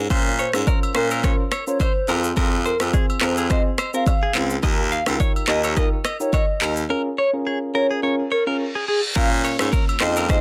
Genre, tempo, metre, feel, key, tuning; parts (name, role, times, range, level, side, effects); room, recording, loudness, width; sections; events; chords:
afrobeats; 106 BPM; 4/4; swing 55% on 16ths; Bb dorian; A4 = 437 Hz
raspy baritone saxophone; bass; 0.0-10.4 s; Db2 to Bb2; -25 LUFS; equal
soft electric-piano-like synth keys; accompaniment; 0.1-10.4 s; C4 to Db5; -29 LUFS; equal; chorus
direct-recorded clean electric guitar; riff; 0.1-10.4 s; Ab4 to F5; -30 LUFS; equal; delay
afro-pop drum kit; drums; 0.1-10.4 s; finger snaps, handclaps, kick drum, rim click, shaker; -24 LUFS; equal; soft clipping on snare
agogo bells and woodblock; percussion; 0.1-10.3 s; -35 LUFS; equal
hollow clarinet-like synth lead; melody; 0.4-10.4 s; Ab4 to F5; -27 LUFS; equal; chorus, delay
reverse cymbal and downlifter; sound effects; 8.5-10.4 s; -33 LUFS; equal
ethereal airy pad; sustained chords; 9.7-10.4 s; F3 to Ab4; -37 LUFS; equal
light reverb; dense, heavily limited modern master; -21 LUFS; mono
0.0-9.2 A section; 9.2-10.4 B section
reverse cymbal 8.5-9.2
0.1 Bbmadd9; 2.1 Fm; 4.6 Ebadd9; 6.9 Db6; 9.2 Bbm